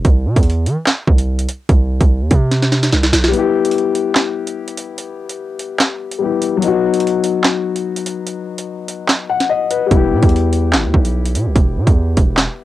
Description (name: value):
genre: hip hop, drill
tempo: 146 BPM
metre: 4/4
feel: half-time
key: E harmonic minor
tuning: A4 = 437 Hz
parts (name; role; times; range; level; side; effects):
- distorted 808-style bass; bass; 0.0-3.3, 9.9-12.5 s; E1 to E3; -16 LUFS; right 1 dB; distortion
- drill drum kit; drums; 0.0-12.5 s; handclaps, hi-hat, kick drum, snare drum; -14 LUFS; right 1 dB; overdrive, cassette tape
- dark baby grand piano; accompaniment; 3.3-12.6 s; F#3 to F#5; -18 LUFS; left 7 dB; low-pass filter, cassette tape
room: little or no reverb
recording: home recording on cassette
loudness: -13 LUFS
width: side -14 dB against mid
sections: 0.0-12.6 A section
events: break 0.0-3.3, 3.3-9.9; drum fill 2.5-3.3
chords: 0.0 C; 3.3 Em; 6.6 B; 9.9 Em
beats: | 0.05 0.46 0.87 1.28 | 1.69 2.10 2.51 2.92 | 3.34 3.75 4.16 4.57 | 4.98 5.39 5.80 6.21 | 6.62 7.04 7.45 7.86 | 8.27 8.68 9.09 9.50 | 9.91 10.32 10.73 11.14 | 11.55 11.97 12.38